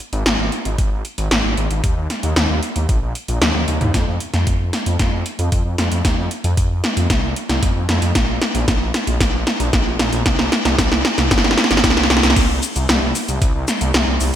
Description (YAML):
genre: synthwave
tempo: 114 BPM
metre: 4/4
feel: straight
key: unclear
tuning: A4 = 441 Hz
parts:
  - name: 80s electronic pad drums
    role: drums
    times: 0.0-14.3 s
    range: cabasa, crash cymbal, hi-hat, snare drum, toms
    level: -18 LUFS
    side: equal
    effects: gated reverb on snare and toms, gated reverb
  - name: wide detuned saw bass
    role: bass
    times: 0.1-14.3 s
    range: G1 to F2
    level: -20 LUFS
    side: equal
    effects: chorus, sidechain pumping
  - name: electronic kick drum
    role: drums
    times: 0.8-13.5 s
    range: none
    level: -19 LUFS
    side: equal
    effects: none
room: moderate lush hall reverb, RT60 1.6 s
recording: bright 1980s-style digital production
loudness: -15 LUFS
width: side -10 dB against mid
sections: 0.0-3.9 A section; 3.9-12.4 B section; 12.4-14.4 C section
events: drum fill 3.4-3.9, 3.9-12.4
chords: none